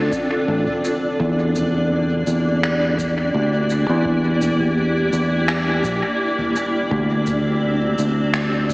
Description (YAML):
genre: ambient dub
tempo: 84 BPM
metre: 4/4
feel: swing 55% on 16ths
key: unclear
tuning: A4 = 440 Hz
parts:
  - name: granular cloud pad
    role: sustained chords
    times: 0.0-8.7 s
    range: Bb3 to D5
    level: -20 LUFS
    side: equal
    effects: built-in reverb
  - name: fingered electric bass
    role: bass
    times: 0.0-8.7 s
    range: A1 to E2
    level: -19 LUFS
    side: equal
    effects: none
  - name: electronic kick drum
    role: drums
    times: 0.1-8.7 s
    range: none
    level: -36 LUFS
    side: equal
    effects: small room ambience
  - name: soft-mallet drum kit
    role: drums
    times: 0.1-8.7 s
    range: finger snaps, shaker, toms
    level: -29 LUFS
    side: equal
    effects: small room ambience, dub echo
room: wet cathedral reverb, RT60 6.0 s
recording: dreamy mix soaked in reverb, vinyl crackle, small speaker sound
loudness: -17 LUFS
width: side -24 dB against mid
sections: 0.0-8.7 A section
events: none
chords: 0.0 Dm7; 1.2 Em7b5; 6.9 Dm7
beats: 0.48 | 1.20 1.91 2.63 3.34 | 4.05 4.77 5.48 6.20 | 6.91 7.63 8.34